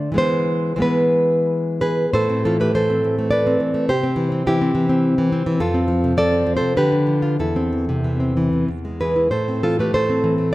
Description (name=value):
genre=romantic piece for solo classical guitar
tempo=91-106 BPM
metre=3/4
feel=rubato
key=A minor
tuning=A4 = 440 Hz
part: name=nylon-string guitar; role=solo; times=0.0-10.5 s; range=E2 to D5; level=-17 LUFS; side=equal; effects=none
room=moderate recital hall reverb, RT60 1.8 s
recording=none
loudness=-17 LUFS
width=side -17 dB against mid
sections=0.0-2.1 A section; 2.1-10.5 B section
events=none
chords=0.2 E; 2.1 Am; 3.9 C; 5.6 F; 6.8 Dm; 7.4 Am/E; 8.7 E; 9.3 Am